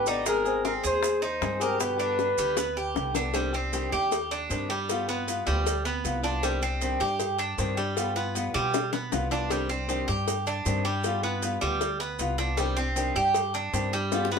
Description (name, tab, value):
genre	latin, Cuban son and guajira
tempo	156 BPM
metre	4/4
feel	straight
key	C harmonic minor from 3.4 s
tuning	A4 = 440 Hz
part	trumpet with bucket mute	melody	0.0-3.1 s	Bb4 to D5	-28 LUFS	equal	none
part	flamenco guitar	accompaniment	0.0-14.4 s	B2 to Ab4	-32 LUFS	left 4 dB	none
part	Cuban tres	arpeggios	0.0-14.4 s	G3 to Ab4	-29 LUFS	right 2 dB	none
part	upright bass	bass	0.0-14.4 s	Ab1 to B2	-33 LUFS	equal	none
part	bongos and cowbell	percussion	0.1-14.4 s	none	-33 LUFS	left 5 dB	none
part	maracas	percussion	0.1-14.4 s	none	-38 LUFS	right 6 dB	none
room	moderate studio ambience, RT60 0.5 s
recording	band playing live in one room, tape saturation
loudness	-25 LUFS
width	side -6 dB against mid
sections	0.0-3.4 A section; 3.4-14.4 B section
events	drum fill 2.6-3.4, 8.7-9.5, 14.1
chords	0.3 Abadd9; 1.8 G; 3.4 Cmadd9; 4.9 G7; 6.4 Cmadd9; 8.0 G7; 9.5 Cmadd9; 11.0 G7; 12.6 Cmadd9